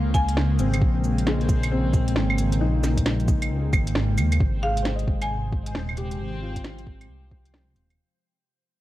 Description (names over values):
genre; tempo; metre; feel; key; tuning
future garage; 134 BPM; 4/4; swing 63% on 16ths; unclear; A4 = 440 Hz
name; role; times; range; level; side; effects
felt-muted upright piano; accompaniment; 0.0-8.1 s; Ab3 to Eb5; -32 LUFS; left 4 dB; sidechain pumping, low-pass filter, tape echo
airy breathy pad; sustained chords; 0.0-8.0 s; C3 to Bb3; -30 LUFS; equal; chorus, sidechain pumping
dark detuned saw bass; bass; 0.0-8.0 s; Eb1 to Eb2; -24 LUFS; equal; none
backwards swelling texture; texture; 0.0-8.0 s; C4 to C5; -40 LUFS; equal; built-in reverb
marimba with hard mallets; melody; 0.1-0.8, 4.6-5.5 s; F5 to Ab5; -30 LUFS; equal; analog delay
electronic kick drum; drums; 0.1-7.4 s; none; -23 LUFS; equal; overdrive
organic electronic drum kit; drums; 0.1-8.0 s; cabasa, claves, hi-hat, snare drum; -29 LUFS; right 1 dB; overdrive
room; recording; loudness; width
light reverb; cassette tape; -21 LUFS; side -15 dB against mid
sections
0.0-4.4 A section; 4.4-8.0 B section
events
kick drops out 4.0-4.4; fade-out 4.4-8.0; filter sweep on felt piano 4.4-8.0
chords
0.0 Bbm9; 4.4 Abmaj7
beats
0.37 | 0.82 1.27 1.72 2.16 | 2.61 3.06 3.51 3.96 | 4.40 4.85 5.30 5.75 | 6.19 6.64 7.09 7.54